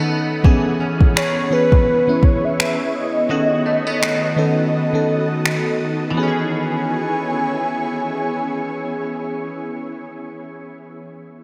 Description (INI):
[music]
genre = contemporary R&B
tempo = 84 BPM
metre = 4/4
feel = swing 58% on 16ths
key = E major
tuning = A4 = 440 Hz
[part]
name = FM electric piano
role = accompaniment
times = 0.0-11.4 s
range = D#3 to A4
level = -26 LUFS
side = equal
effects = phaser
[part]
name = ethereal airy pad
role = sustained chords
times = 0.0-9.8 s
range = D#3 to B5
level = -27 LUFS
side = equal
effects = ensemble chorus, built-in reverb, sidechain pumping
[part]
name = direct-recorded clean electric guitar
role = arpeggios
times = 0.0-10.1 s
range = D#3 to G#4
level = -29 LUFS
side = equal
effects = analog chorus, analog delay
[part]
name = smooth R&B drum kit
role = drums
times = 0.4-5.6 s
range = finger snaps, kick drum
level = -19 LUFS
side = equal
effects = none
[part]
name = warm velvety synth lead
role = melody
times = 1.2-9.8 s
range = B4 to G#5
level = -24 LUFS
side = equal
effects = chorus, analog delay
[sound]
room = wet huge ambient reverb, RT60 4.5 s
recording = dreamy mix soaked in reverb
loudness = -19 LUFS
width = mono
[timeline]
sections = 0.4-6.2 A section; 6.2-9.0 B section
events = break 0.0-0.4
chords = 0.4 E6; 3.3 B7/D#; 6.2 E6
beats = | 0.44 1.16 1.87 2.59 | 3.30 4.01 4.73 5.44 | 6.16 6.87 7.59 8.30